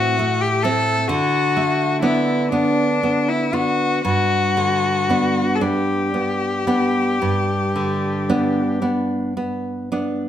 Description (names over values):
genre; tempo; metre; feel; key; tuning
romantic duo for cello and classical guitar; 36-45 BPM (dotted quarters); 12/8; rubato; G major; A4 = 439 Hz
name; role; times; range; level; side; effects
rich cello; melody; 0.0-8.8 s; D4 to A4; -20 LUFS; left 3 dB; none
nylon-string guitar; accompaniment; 0.0-10.3 s; G2 to D4; -20 LUFS; right 1 dB; none
room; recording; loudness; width
moderate recital hall reverb, RT60 1.5 s; none; -17 LUFS; side -10 dB against mid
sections
0.0-10.3 A section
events
none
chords
0.0 Am; 1.1 D6; 4.0 G